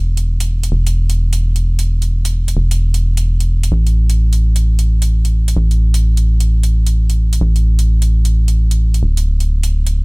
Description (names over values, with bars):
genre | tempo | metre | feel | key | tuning
UK garage, two-step garage | 130 BPM | 4/4 | swing 63% on 16ths | unclear | A4 = 441 Hz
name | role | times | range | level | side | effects
organ-like FM bass | bass | 0.0-10.0 s | D1 to A1 | -12 LUFS | equal | none
electronic hi-hat | drums | 0.2-9.9 s | none | -26 LUFS | right 3 dB | small room ambience
room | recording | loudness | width
little or no reverb | none | -12 LUFS | side -32 dB against mid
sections
0.0-10.0 A section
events
none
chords
none